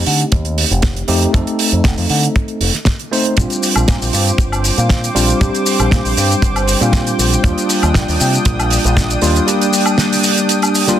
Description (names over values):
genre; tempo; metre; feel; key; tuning
nu-disco, nu disco; 118 BPM; 4/4; straight; unclear; A4 = 440 Hz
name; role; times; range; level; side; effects
tine electric piano; accompaniment; 0.0-11.0 s; G3 to C5; -18 LUFS; equal; fast stereo tremolo, sidechain pumping, dub echo
picked electric bass with an envelope filter; bass; 0.0-9.4 s; F1 to D3; -17 LUFS; equal; sidechain pumping
damped 70s drum kit; drums; 0.1-11.0 s; hi-hat, shaker, snare drum, woodblock; -18 LUFS; right 2 dB; studio reverb
kick drum; drums; 0.3-9.1 s; none; -14 LUFS; equal; soft clipping on kick, studio reverb, soft clipping on snare
lush unison pad; sustained chords; 3.4-11.0 s; D4 to Eb6; -21 LUFS; equal; chorus, sidechain pumping
room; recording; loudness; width
light reverb, studio reverb; dense, heavily limited modern master; -12 LUFS; side -11 dB against mid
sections
0.0-11.0 A section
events
none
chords
0.0 F7; 3.4 Bb69; 7.4 Ebmaj7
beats
0.32 0.83 | 1.34 1.85 2.36 2.86 | 3.37 3.88 4.39 4.90 | 5.41 5.92 6.42 6.93 | 7.44 7.95 8.46 8.97 | 9.47 9.98 10.49